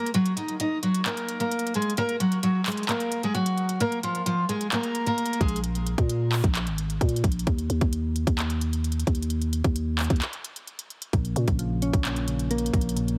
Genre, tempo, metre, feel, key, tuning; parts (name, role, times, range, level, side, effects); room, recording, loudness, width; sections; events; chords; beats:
hip hop, trap; 131 BPM; 4/4; half-time; Bb minor; A4 = 443 Hz
picked steel-string acoustic guitar; melody; 0.0-5.6 s; F3 to Eb5; -27 LUFS; equal; low-pass filter, delay
trap drum kit; drums; 0.1-13.2 s; handclaps, hi-hat, kick drum; -30 LUFS; equal
growling 808-style bass; bass; 5.4-13.2 s; Ab1 to Bb2; -29 LUFS; equal
soft electric-piano-like synth keys; accompaniment; 11.1-13.2 s; Bb2 to Db4; -30 LUFS; equal; chorus, low-pass filter
digital ambience; heavily compressed radio sound, multiband compression; -26 LUFS; mono
0.0-13.2 A section
break 0.0-3.8, 10.2-11.1; kick muted 3.8-4.7
0.1 Ebm (rootless); 3.8 Bb5; 7.5 N.C.; 11.1 Bbm
| 0.14 0.60 1.06 1.51 | 1.97 2.43 2.89 3.35 | 3.81 4.26 4.72 5.18 | 5.64 6.09 6.55 7.01 | 7.47 7.93 8.38 8.84 | 9.30 9.76 10.22 10.68 | 11.13 11.59 12.05 12.51 | 12.96